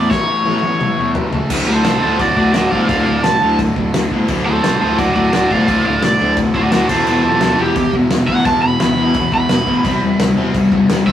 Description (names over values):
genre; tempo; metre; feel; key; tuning
punk rock; 172 BPM; 4/4; straight; unclear; A4 = 440 Hz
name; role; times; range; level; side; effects
cranked stack guitar; melody; 0.0-11.1 s; F4 to B5; -16 LUFS; right 2 dB; overdrive
distorted electric guitar; riff; 0.0-11.1 s; D2 to C4; -19 LUFS; left 4 dB; distortion
distorted electric guitar; riff; 0.0-11.1 s; D2 to C4; -23 LUFS; equal; overdrive
sludgy distorted guitar; riff; 0.0-11.1 s; D2 to C4; -21 LUFS; right 2 dB; overdrive
fuzz picked electric bass; bass; 0.0-11.1 s; D1 to E2; -23 LUFS; left 1 dB; overdrive
loose indie drum kit; drums; 0.1-11.1 s; crash cymbal, kick drum, snare drum, toms; -20 LUFS; left 1 dB; none
room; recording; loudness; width
moderate stone room reverb, RT60 1.3 s; rough rehearsal-room recording, warm saturation, small room ambience; -12 LUFS; side -10 dB against mid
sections
0.0-1.5 A section; 1.5-11.1 B section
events
drum fill 0.1-1.5; overdriven electric guitar solo 1.5-11.1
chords
0.0 A; 1.5 D; 6.9 E5; 9.8 C